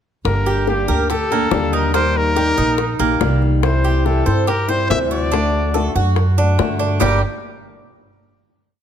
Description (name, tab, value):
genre	latin, Cuban son and guajira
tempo	142 BPM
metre	4/4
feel	straight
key	G harmonic minor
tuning	A4 = 440 Hz
part	upright bass	bass	0.2-7.2 s	G1 to G2	-19 LUFS	right 1 dB	none
part	clear trumpet	melody	0.3-7.2 s	G4 to E5	-22 LUFS	left 2 dB	none
part	flamenco guitar	accompaniment	0.3-7.2 s	G2 to G4	-22 LUFS	left 6 dB	none
part	bongos	percussion	0.3-7.1 s	none	-25 LUFS	left 8 dB	none
part	Cuban tres	arpeggios	0.5-7.2 s	G3 to C5	-21 LUFS	right 5 dB	none
room	light reverb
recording	close, detailed microphones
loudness	-15 LUFS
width	side -9 dB against mid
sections	0.3-7.0 verse; 7.0-8.7 final chord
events	none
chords	0.3 Gm; 1.9 Eb; 3.6 C; 5.3 D; 7.0 G5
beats	| 0.25 0.68 1.10 1.52 | 1.94 2.36 2.78 3.21 | 3.63 4.05 4.47 4.90 | 5.32 5.74 6.16 6.59 | 7.01